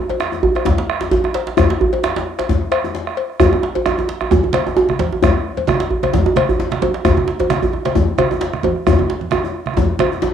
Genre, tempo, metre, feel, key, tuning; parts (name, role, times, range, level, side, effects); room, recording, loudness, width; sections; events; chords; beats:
west african traditional, West African drum ensemble; 132 BPM; 4/4; swing 54% on 16ths
cowbell; percussion; 0.1-10.1 s; -23 LUFS; left 10 dB
djembe; percussion; 0.1-10.3 s; -18 LUFS; right 4 dB
bombo; percussion; 0.2-10.3 s; -21 LUFS; right 3 dB
djembe; percussion; 0.2-10.3 s; -20 LUFS; left 6 dB
congas; percussion; 4.3-10.3 s; -23 LUFS; right 5 dB
wet studio reverb, RT60 0.6 s; home recording on cassette; -14 LUFS; side -8 dB against mid
0.0-10.3 A section
drum fill 9.8-10.3
0.20 | 0.66 1.12 1.58 2.03 | 2.49 2.95 3.40 3.86 | 4.31 4.77 5.23 5.68 | 6.14 6.59 7.04 7.50 | 7.95 8.41 8.86 9.32 | 9.77 10.22